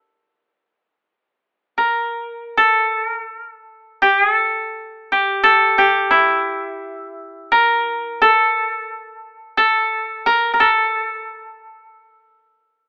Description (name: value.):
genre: japanese traditional, Japanese chamber music.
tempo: 85 BPM.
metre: 4/4.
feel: uneven beats, rubato.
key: unclear.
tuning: A4 = 440 Hz.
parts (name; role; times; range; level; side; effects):
koto; solo; 0.0-12.9 s; E4 to Bb4; -17 LUFS; equal; none.
room: light reverb.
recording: telephone sound.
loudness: -17 LUFS.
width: mono.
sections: 0.0-2.5 A section; 2.5-12.9 B section.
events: none.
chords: none.